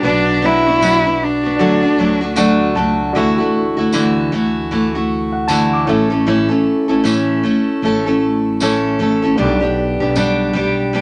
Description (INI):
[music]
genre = acoustic pop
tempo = 77 BPM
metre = 4/4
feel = swing 60% on 16ths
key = D major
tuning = A4 = 440 Hz
[part]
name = warm cello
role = melody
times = 0.0-2.8 s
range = D4 to E4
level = -18 LUFS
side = equal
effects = none
[part]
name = overdriven reed electric piano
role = accompaniment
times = 0.0-11.0 s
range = B3 to D6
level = -24 LUFS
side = equal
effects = fast tremolo
[part]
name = picked steel-string acoustic guitar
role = accompaniment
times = 0.0-11.0 s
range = A2 to A4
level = -17 LUFS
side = equal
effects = none
[part]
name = upright bass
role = bass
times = 0.0-11.0 s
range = A1 to D2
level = -27 LUFS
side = equal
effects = none
[part]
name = tambourine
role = percussion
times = 0.8-10.4 s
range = none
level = -29 LUFS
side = equal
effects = none
[sound]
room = moderate small room ambience, RT60 0.5 s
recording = none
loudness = -16 LUFS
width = mono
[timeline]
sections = 0.0-3.1 A section; 3.1-11.0 B section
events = reed electric piano fill 2.0-3.1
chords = 0.0 Bm; 1.6 D; 3.1 Dadd9; 5.9 A; 9.4 G/B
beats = | 0.04 0.81 1.59 2.37 | 3.15 3.93 4.71 5.49 | 6.26 7.04 7.82 8.60 | 9.38 10.16 10.94